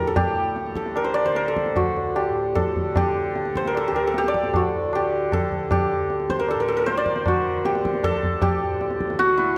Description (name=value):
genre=indian classical, Hindustani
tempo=153 BPM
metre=7/4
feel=straight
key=D raga charukeshi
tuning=A4 = 440 Hz
part: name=santur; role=melody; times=0.0-9.6 s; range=D4 to D5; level=-24 LUFS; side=equal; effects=none
part: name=tanpura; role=drone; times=0.0-9.6 s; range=D2 to D3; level=-35 LUFS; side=equal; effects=none
part: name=tabla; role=percussion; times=0.2-9.5 s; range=none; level=-30 LUFS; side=equal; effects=none
room=moderate scoring stage reverb, RT60 1.7 s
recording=none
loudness=-23 LUFS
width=mono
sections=0.2-9.6 A section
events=speeding up 0.0-9.6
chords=none